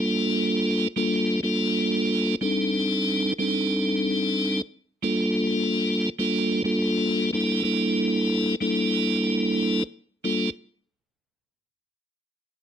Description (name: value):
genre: hip hop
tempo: 92 BPM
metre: 4/4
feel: swing 59% on 16ths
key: G minor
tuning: A4 = 440 Hz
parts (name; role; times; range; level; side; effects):
- tonewheel organ; solo; 0.0-10.5 s; G3 to A4; -22 LUFS; equal; slow rotary speaker
room: light reverb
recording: none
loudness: -22 LUFS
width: side -8 dB against mid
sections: 0.0-10.2 A section; 10.2-12.6 B section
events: none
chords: 0.0 Gm9; 2.4 Cm69/G; 5.0 Gm9; 7.3 Gm69; 10.2 Gm9